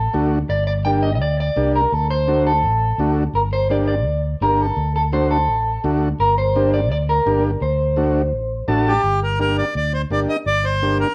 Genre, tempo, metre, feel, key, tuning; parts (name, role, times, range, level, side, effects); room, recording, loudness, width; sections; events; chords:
latin; 168 BPM; 4/4; straight; G harmonic minor; A4 = 444 Hz
electric guitar at the edge of break-up; melody; 0.0-8.6 s; A4 to G5; -22 LUFS; equal; spring reverb, slapback echo
fingered electric bass; bass; 0.0-11.0 s; G1 to D2; -24 LUFS; equal
overdriven combo organ; accompaniment; 0.1-11.1 s; A3 to A5; -24 LUFS; equal
accordion; second line; 8.9-11.1 s; G4 to Eb5; -22 LUFS; equal
moderate studio ambience, RT60 0.5 s; -19 LUFS; mono
0.0-9.0 A section; 9.0-11.1 B section
transistor combo organ fill 8.5-9.0; accordion solo 9.0-11.1
0.5 Gm; 1.9 D7; 3.3 Gm; 4.8 D; 6.2 Gm; 7.6 D7; 9.0 Gm